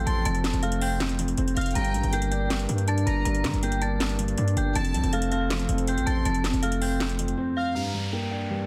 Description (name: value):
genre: hip hop, trap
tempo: 160 BPM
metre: 4/4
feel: half-time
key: G minor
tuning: A4 = 440 Hz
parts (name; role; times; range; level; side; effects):
- metallic FM bell; melody; 0.0-8.7 s; F5 to Bb6; -34 LUFS; equal; chorus, tremolo, low-pass filter
- felt-muted upright piano; accompaniment; 0.0-8.7 s; F2 to D4; -32 LUFS; equal; low-pass filter
- dark analog pad; sustained chords; 0.0-7.7 s; F3 to Bb4; -38 LUFS; equal; chorus
- distorted 808-style bass; bass; 0.0-7.3 s; F1 to D3; -29 LUFS; equal; distortion
- warm studio violin section; second line; 0.1-7.7 s; F5 to C6; -40 LUFS; equal; tape echo
- trap drum kit; drums; 0.1-7.4 s; handclaps, hi-hat, snare drum; -34 LUFS; equal; overdrive
- downlifter; sound effects; 7.8-8.7 s; none; -36 LUFS; equal; none
room: little or no reverb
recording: dense, heavily limited modern master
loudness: -26 LUFS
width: mono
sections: 0.0-7.8 A section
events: drums muted 7.4-7.8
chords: 0.0 F; 1.8 Gm; 4.8 F; 7.8 Gm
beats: | 0.25 0.63 1.00 1.38 | 1.75 2.13 2.50 2.88 | 3.25 3.63 4.00 4.38 | 4.75 5.13 5.50 5.88 | 6.25 6.63 7.00 7.38 | 7.75 8.13 8.50